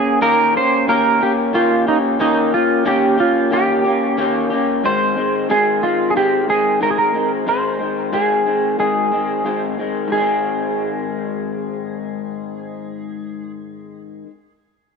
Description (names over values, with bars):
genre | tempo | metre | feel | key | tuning
indie pop | 91 BPM | 4/4 | swing 55% on 16ths | Ab major | A4 = 440 Hz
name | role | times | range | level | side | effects
clean lap steel guitar | melody | 0.0-13.5 s | Eb4 to C5 | -17 LUFS | right 2 dB | analog chorus, tape echo
electric guitar through a small old amp | accompaniment | 0.0-14.3 s | Ab2 to G4 | -19 LUFS | left 2 dB | analog chorus, vibrato effect
room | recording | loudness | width
wet spring reverb, RT60 1.3 s, digital ambience | dark, warm production | -15 LUFS | side -5 dB against mid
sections
0.0-4.8 A section; 4.8-10.1 B section; 10.1-12.7 C section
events
none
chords
0.0 Eb7; 4.8 Ab